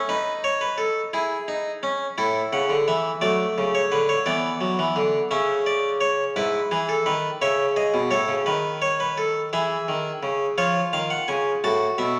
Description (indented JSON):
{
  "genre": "classical, baroque-style 3-part fugue for harpsichord",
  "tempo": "57 BPM (dotted quarters)",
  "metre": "6/8",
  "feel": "straight",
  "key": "unclear",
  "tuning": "A4 = 440 Hz",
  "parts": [
    { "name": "harpsichord", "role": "solo", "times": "0.0-12.2 s", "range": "G#2 to A5", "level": "-23 LUFS", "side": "equal", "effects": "none" }
  ],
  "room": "wet recital hall reverb, RT60 1.5 s",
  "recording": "vinyl crackle",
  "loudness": "-23 LUFS",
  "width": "mono",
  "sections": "0.0-10.6 A section; 10.6-12.2 B section",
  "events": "none",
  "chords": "0.1 B7/D#; 1.1 E; 2.2 A; 3.2 D; 4.3 E5; 5.3 C#m; 6.4 E/G#; 7.4 A/C#; 8.5 B7/D#; 9.5 E; 10.6 C#; 11.6 F#m/A",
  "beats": "| 0.10 1.14 | 2.18 3.22 | 4.26 5.32 | 6.37 7.42 | 8.47 9.53 | 10.58 11.63"
}